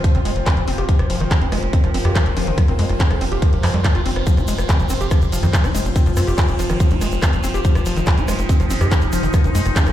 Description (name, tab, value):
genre	psychedelic trance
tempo	142 BPM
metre	4/4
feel	straight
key	unclear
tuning	A4 = 444 Hz
part	formant-sweep wobble bass	second line	0.0-3.2, 5.7-9.9 s	Ab3 to C4	-34 LUFS	left 1 dB	none
part	evolving wavetable pad	sustained chords	0.0-9.9 s	F3 to Bb4	-27 LUFS	left 1 dB	phaser, built-in reverb, sidechain pumping
part	overdriven acid bass	riff	0.0-9.9 s	Eb3 to G4	-25 LUFS	moving between left 5 dB and right 5 dB	distortion, auto-pan, vintage 12-bit sampler grit, sidechain pumping, digital delay
part	drum and bass drum kit	drums	0.0-9.9 s	handclaps, hi-hat, rim click	-26 LUFS	equal	none
part	electronic kick drum	drums	0.0-9.8 s	none	-15 LUFS	equal	overdrive
part	airy breathy pad	texture	0.0-9.9 s	F4 to G5	-29 LUFS	left 1 dB	chorus, sidechain pumping
part	tight sequencer bass	bass	0.1-9.9 s	F1 to F2	-20 LUFS	equal	none
part	egg shaker	percussion	4.3-9.9 s	none	-36 LUFS	right 3 dB	none
room	light reverb, digital ambience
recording	played on a big sound system in a bare room, large studio reverb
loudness	-15 LUFS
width	side -12 dB against mid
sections	0.0-9.9 A section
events	none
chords	0.0 F5